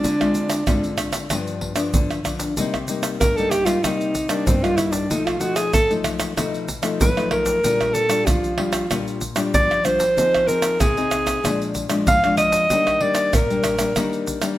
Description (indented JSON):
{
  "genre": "samba and choro",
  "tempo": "95 BPM",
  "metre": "4/4",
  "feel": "straight",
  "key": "Bb major",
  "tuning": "A4 = 440 Hz",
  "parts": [
    { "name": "breathy alto saxophone", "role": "melody", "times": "0.0-14.3 s", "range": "C4 to F5", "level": "-20 LUFS", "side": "right 1 dB", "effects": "none" },
    { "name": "nylon-string guitar", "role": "accompaniment", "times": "0.0-14.6 s", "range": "F2 to Ab4", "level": "-24 LUFS", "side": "left 4 dB", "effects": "none" },
    { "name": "egg shaker, surdo, pandeiro and tamborim", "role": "percussion", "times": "0.0-14.6 s", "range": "none", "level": "-23 LUFS", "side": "right 1 dB", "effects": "none" }
  ],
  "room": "moderate large studio reverb, RT60 1.2 s",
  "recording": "none",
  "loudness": "-18 LUFS",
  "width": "side -14 dB against mid",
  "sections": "0.0-14.6 A section",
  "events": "alto saxophone solo 0.0-14.6",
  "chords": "0.0 Dm7b5; 1.3 G7; 2.6 Cm7; 5.1 B7#11; 7.6 Bb6; 10.2 Fm7; 11.4 Bb7; 12.7 Ebmaj7"
}